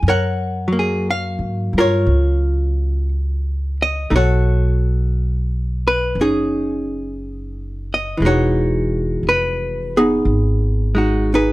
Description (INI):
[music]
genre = jazz ballad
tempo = 59 BPM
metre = 4/4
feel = swing 68% on 8ths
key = unclear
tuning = A4 = 439 Hz
[part]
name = hollow-body jazz guitar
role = accompaniment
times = 0.0-11.5 s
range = E3 to F#5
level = -18 LUFS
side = equal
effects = none
[part]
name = upright bass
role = bass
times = 0.0-11.5 s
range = E1 to G#2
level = -19 LUFS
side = equal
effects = none
[sound]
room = little or no reverb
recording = close, detailed microphones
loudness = -16 LUFS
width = side -18 dB against mid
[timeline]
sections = 0.0-11.5 A section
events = none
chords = 0.0 F#maj9; 4.1 B13; 8.2 Emaj9